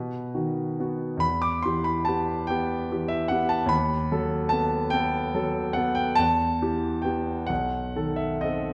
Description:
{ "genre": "classical, romantic nocturne for solo piano", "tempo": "39-50 BPM (dotted quarters)", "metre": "6/8", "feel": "rubato", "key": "E minor", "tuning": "A4 = 440 Hz", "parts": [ { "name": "warm concert grand piano", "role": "solo", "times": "0.0-8.7 s", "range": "B1 to D6", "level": "-26 LUFS", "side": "equal", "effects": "none" } ], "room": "wet recital hall reverb, RT60 1.5 s", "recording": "none", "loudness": "-26 LUFS", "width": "mono", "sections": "0.0-8.7 A section", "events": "none", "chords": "0.0 B; 1.2 Em; 3.7 B7/D#; 6.2 Em; 7.5 B7b9" }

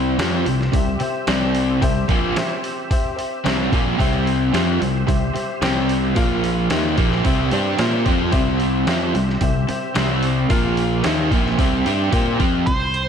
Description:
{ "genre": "classic rock", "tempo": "111 BPM", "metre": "4/4", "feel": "straight", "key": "C major", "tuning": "A4 = 440 Hz", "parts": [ { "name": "bright upright piano", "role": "accompaniment", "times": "0.0-12.6 s", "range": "F4 to G5", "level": "-28 LUFS", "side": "left 3 dB", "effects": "slapback echo" }, { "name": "tonewheel organ", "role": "sustained chords", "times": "0.0-12.7 s", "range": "Bb3 to F5", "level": "-31 LUFS", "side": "equal", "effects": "none" }, { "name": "overdriven semi-hollow guitar", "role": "riff", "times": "0.0-12.7 s", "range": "Bb2 to Bb4", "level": "-23 LUFS", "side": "left 8 dB", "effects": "none" }, { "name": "overdriven semi-hollow guitar", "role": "riff", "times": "0.0-12.7 s", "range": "Bb2 to Bb4", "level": "-23 LUFS", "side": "right 9 dB", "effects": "tremolo" }, { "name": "fingered electric bass", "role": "bass", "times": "0.0-13.1 s", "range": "Bb1 to Bb2", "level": "-24 LUFS", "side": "equal", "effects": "none" }, { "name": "trip hop sampler-style drum kit", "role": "drums", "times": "0.2-13.1 s", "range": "hi-hat, kick drum, snare drum", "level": "-23 LUFS", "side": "equal", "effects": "none" }, { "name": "octave-fuzz lead guitar", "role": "melody", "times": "12.7-13.1 s", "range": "C5", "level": "-21 LUFS", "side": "right 2 dB", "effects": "wah, distortion, slapback echo" } ], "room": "moderate scoring stage reverb, RT60 2.0 s", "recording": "big arena sound", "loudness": "-17 LUFS", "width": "side -7 dB against mid", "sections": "0.0-12.7 A section", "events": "kick and snare drop out 12.1-12.7", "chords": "0.0 C; 6.2 Bb5; 6.7 C; 10.5 Bb5; 11.0 C" }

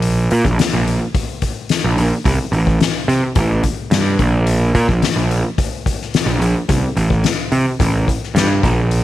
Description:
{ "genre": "psychedelic rock", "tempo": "108 BPM", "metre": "4/4", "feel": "straight", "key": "unclear", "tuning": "A4 = 441 Hz", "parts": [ { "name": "fuzz picked electric bass", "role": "bass", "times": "0.0-9.0 s", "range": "A1 to C3", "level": "-15 LUFS", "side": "right 1 dB", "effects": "overdrive" }, { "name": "soft-mallet drum kit", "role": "drums", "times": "0.0-9.0 s", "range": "hi-hat, kick drum, snare drum", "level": "-18 LUFS", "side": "left 3 dB", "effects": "none" } ], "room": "light reverb", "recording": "1960s-style stereo", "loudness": "-14 LUFS", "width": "side -14 dB against mid", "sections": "0.0-9.0 A section", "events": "none", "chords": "none" }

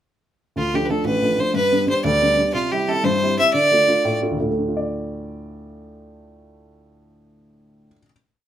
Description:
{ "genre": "celtic folk, Celtic jig", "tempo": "120 BPM (dotted quarters)", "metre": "6/8", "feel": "straight", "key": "D dorian", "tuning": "A4 = 440 Hz", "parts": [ { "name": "clear fiddle", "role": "melody", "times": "0.6-4.2 s", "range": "F4 to E5", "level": "-18 LUFS", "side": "right 1 dB", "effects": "none" }, { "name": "dark upright piano", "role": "accompaniment", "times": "0.6-8.1 s", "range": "A1 to D5", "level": "-22 LUFS", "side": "equal", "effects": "none" } ], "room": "moderate studio reverb, RT60 0.6 s", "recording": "minimal, uncompressed stereo recording", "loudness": "-17 LUFS", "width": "side -10 dB against mid", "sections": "0.6-4.5 A section; 4.5-6.5 final chord", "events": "none", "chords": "0.6 Dm; 1.5 G; 2.5 C; 3.5 Dm" }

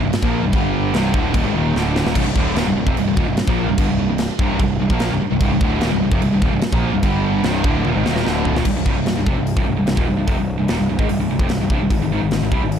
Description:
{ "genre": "heavy metal", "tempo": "148 BPM", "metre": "4/4", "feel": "straight", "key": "C minor", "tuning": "A4 = 440 Hz", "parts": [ { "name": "distorted electric guitar", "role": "riff", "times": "0.0-12.8 s", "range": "C2 to Bb3", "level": "-23 LUFS", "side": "left 10 dB", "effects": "distortion" }, { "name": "high-gain distorted guitar", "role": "riff", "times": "0.0-12.8 s", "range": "C2 to Bb3", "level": "-23 LUFS", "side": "right 10 dB", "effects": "distortion" }, { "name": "thick fuzz guitar", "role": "riff", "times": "0.0-8.7 s", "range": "C2 to Bb3", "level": "-23 LUFS", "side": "right 1 dB", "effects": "distortion" }, { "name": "fuzz picked electric bass", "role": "bass", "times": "0.0-12.8 s", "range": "C1 to C2", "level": "-23 LUFS", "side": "equal", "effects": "overdrive" }, { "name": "tight metal drum kit", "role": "drums", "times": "0.1-12.8 s", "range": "china cymbal, crash cymbal, hi-hat, kick drum, snare drum, toms", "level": "-21 LUFS", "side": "equal", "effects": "none" } ], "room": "small room ambience", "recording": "dark, warm production", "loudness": "-16 LUFS", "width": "side -8 dB against mid", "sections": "0.0-8.7 A section; 8.7-12.8 B section", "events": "drum fill 1.8-2.2, 7.8-8.7", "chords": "0.0 C5; 0.5 G5; 0.9 Cm; 7.0 G5; 7.4 Cm; 11.9 Ab5" }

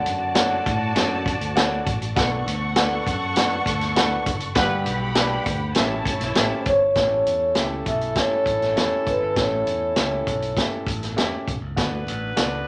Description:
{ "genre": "uptempo 1960s-style soul", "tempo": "100 BPM", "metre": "4/4", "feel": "straight", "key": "A mixolydian", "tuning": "A4 = 440 Hz", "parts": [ { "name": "vibraphone with soft mallets", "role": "melody", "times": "0.0-1.2, 6.6-10.5 s", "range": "B4 to F#5", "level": "-25 LUFS", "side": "equal", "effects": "none" }, { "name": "warm studio violin section", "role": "second line", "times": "0.0-6.9 s", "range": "E4 to C#6", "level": "-30 LUFS", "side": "equal", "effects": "none" }, { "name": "dark upright piano", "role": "accompaniment", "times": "0.0-12.7 s", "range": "G2 to A5", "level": "-30 LUFS", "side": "equal", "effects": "none" }, { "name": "modern bright fingered electric bass", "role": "bass", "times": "0.1-12.6 s", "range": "F#1 to A2", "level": "-33 LUFS", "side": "equal", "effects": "none" }, { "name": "vintage drum kit", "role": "drums", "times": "0.1-12.5 s", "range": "hi-hat, kick drum, snare drum", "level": "-26 LUFS", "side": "equal", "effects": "none" }, { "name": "warm horn section", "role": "second line", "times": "4.5-12.7 s", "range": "B3 to B4", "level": "-32 LUFS", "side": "equal", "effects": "none" } ], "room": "wet club reverb, RT60 0.6 s", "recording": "none", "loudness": "-22 LUFS", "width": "mono", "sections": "0.0-7.0 A section; 7.0-12.7 B section", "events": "band accent 4.6-7.0", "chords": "0.0 Dmaj7; 2.2 Bm7; 4.6 Gmaj7; 5.8 A7; 11.8 D6" }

